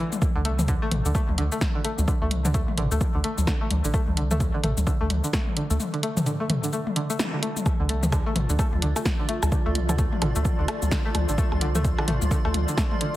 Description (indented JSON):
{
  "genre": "minimal techno",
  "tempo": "129 BPM",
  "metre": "4/4",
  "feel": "swing 60% on 16ths",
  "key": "D minor",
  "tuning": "A4 = 442 Hz",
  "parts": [
    { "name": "string-like resonator pluck", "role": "riff", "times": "0.0-13.0 s", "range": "D3 to A3", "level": "-30 LUFS", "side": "equal", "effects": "chorus, cassette tape, sidechain pumping, ping-pong delay" },
    { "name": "punchy analog drum machine", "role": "drums", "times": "0.1-13.1 s", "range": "hi-hat, shaker, snare drum", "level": "-30 LUFS", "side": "equal", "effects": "overdrive" },
    { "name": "electronic toms and percussion blips", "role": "percussion", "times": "0.1-13.0 s", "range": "none", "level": "-30 LUFS", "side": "left 2 dB", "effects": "overdrive" },
    { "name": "electronic kick drum", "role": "drums", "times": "0.2-12.9 s", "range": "none", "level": "-25 LUFS", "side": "equal", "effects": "overdrive" },
    { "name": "rubbery square bass", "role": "bass", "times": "0.4-12.7 s", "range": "A1 to D2", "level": "-25 LUFS", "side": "equal", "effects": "sidechain pumping" },
    { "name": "granular cloud pad", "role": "texture", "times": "8.3-13.2 s", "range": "F4 to C6", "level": "-33 LUFS", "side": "equal", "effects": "built-in reverb, sidechain pumping" }
  ],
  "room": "light reverb",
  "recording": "heavily compressed radio sound, multiband compression",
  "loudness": "-22 LUFS",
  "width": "side -15 dB against mid",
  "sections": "0.0-7.7 A section; 7.7-13.2 B section",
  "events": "kick drops out 5.8-7.7; band accent 7.2; drop 7.7-13.2",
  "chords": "0.0 D5"
}